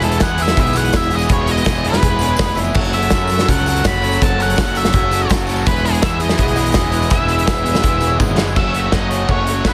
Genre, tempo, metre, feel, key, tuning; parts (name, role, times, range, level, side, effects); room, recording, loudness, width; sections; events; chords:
indie rock; 165 BPM; 4/4; straight; E major; A4 = 439 Hz
octave-fuzz lead guitar; melody; 0.0-9.7 s; G#4 to B5; -23 LUFS; equal; distortion
dark analog pad; sustained chords; 0.0-8.5 s; E4 to E6; -32 LUFS; equal
distorted electric guitar; riff; 0.0-9.7 s; F#2 to A4; -25 LUFS; equal; overdrive
overdriven electric guitar; riff; 0.0-9.7 s; F#2 to A4; -27 LUFS; equal; analog chorus, analog delay
growling picked electric bass; bass; 0.0-9.7 s; E1 to F#2; -22 LUFS; equal; overdrive
loose indie drum kit; drums; 0.0-9.7 s; crash cymbal, hi-hat, kick drum, snare drum, toms; -20 LUFS; equal
tambourine; percussion; 0.1-8.6 s; -38 LUFS; equal
overdriven tine electric piano; second line; 2.2-2.8, 7.5-8.5 s; G#4 to E5; -32 LUFS; equal; phaser
light reverb; dense, heavily limited modern master; -16 LUFS; mono
0.0-8.6 A section; 8.6-9.7 B section
drum fill 8.2-8.6
0.0 Emaj7; 2.8 F#m7; 5.7 Emaj7; 8.6 F#m